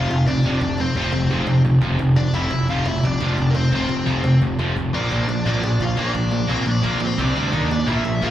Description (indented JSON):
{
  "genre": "punk rock",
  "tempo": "174 BPM",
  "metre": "4/4",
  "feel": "straight",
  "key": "unclear",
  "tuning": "A4 = 440 Hz",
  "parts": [
    { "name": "biting overdriven guitar", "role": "melody", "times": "0.0-8.3 s", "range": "C4 to F5", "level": "-26 LUFS", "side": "left 2 dB", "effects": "slapback echo, tape echo" },
    { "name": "distorted electric guitar", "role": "riff", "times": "0.0-8.3 s", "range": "F2 to Eb4", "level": "-20 LUFS", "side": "equal", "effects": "distortion" },
    { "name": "fuzz picked electric bass", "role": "bass", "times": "0.0-8.3 s", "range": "F1 to Eb2", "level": "-23 LUFS", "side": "equal", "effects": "overdrive" },
    { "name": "cajon", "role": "drums", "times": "0.1-8.3 s", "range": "none", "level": "-30 LUFS", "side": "equal", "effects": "none" }
  ],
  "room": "little or no reverb",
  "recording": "live gig heard through the venue's PA, club reverb",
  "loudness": "-17 LUFS",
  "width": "side -12 dB against mid",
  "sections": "0.0-8.3 A section",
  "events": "drum fill 4.9",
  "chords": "0.0 F5; 4.9 Bb; 7.2 C5; 7.5 Eb5",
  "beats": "0.27 0.62 | 0.96 1.31 1.65 2.00 | 2.35 2.69 3.04 3.38 | 3.73 4.08 4.42 4.77 | 5.11 5.46 5.80 6.15 | 6.50 6.84 7.19 7.53 | 7.88 8.22"
}